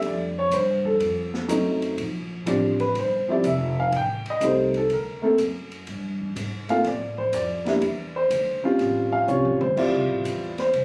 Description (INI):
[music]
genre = jazz piano trio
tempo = 123 BPM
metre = 4/4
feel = swing 68% on 8ths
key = unclear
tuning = A4 = 440 Hz
[part]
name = dark upright piano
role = melody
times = 0.0-10.8 s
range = F3 to G5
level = -24 LUFS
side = equal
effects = none
[part]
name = upright bass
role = bass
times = 0.0-10.8 s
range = F1 to A2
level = -33 LUFS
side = equal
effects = none
[part]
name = open jazz drum kit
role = drums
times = 0.0-10.8 s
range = crash cymbal, hi-hat, kick drum, ride cymbal, snare drum, toms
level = -38 LUFS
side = equal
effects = none
[sound]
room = moderate studio reverb, RT60 0.7 s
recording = recorded on a phone in the room, club reverb, compression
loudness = -24 LUFS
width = mono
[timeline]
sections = 0.0-2.0 A section; 2.0-10.8 A section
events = upright piano solo 0.0-10.8; drum fill 9.3-9.8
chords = 0.0 F69; 1.0 F7b9; 2.0 Bb69; 3.9 Am7b5; 4.9 D(b13); 5.9 G7sus2; 7.8 D7sus2; 8.8 A7alt; 9.8 Dm11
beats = | 0.02 0.51 1.00 1.49 | 1.98 2.46 2.95 3.44 | 3.93 4.41 4.90 5.39 | 5.88 6.36 6.85 7.33 | 7.82 8.31 8.79 9.28 | 9.76 10.25 10.73